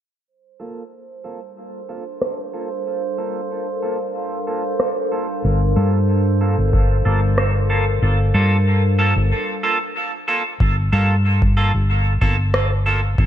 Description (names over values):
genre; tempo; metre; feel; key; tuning
ambient dub; 93 BPM; 4/4; swing 54% on 16ths; G minor; A4 = 442 Hz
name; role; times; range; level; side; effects
warbly tape-like pad; sustained chords; 2.2-9.3 s; G3 to F5; -26 LUFS; left 2 dB; chorus, built-in reverb, phaser
drifting glass-harmonics texture; texture; 1.0-9.3 s; C5; -30 LUFS; right 8 dB; chorus, built-in reverb
clean electric guitar; stabs; 0.6-13.0 s; Bb3 to A4; -24 LUFS; right 2 dB; lush chorus, low-pass filter, dub echo
electronic rim click; drums; 2.2-7.5, 12.5-12.7 s; none; -23 LUFS; right 1 dB; none
hollow-body short-scale fingered electric bass; bass; 5.4-13.3 s; G1 to G2; -17 LUFS; equal; tube saturation
electronic kick drum; drums; 6.7-13.3 s; none; -19 LUFS; equal; overdrive
room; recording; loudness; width
light reverb; low-pass filter; -16 LUFS; side -11 dB against mid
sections
0.3-10.6 A section; 10.6-13.3 B section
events
fade-in on ambient pad 0.3-10.6; filter sweep 0.3-10.6; break 9.3-10.6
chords
0.3 Gm9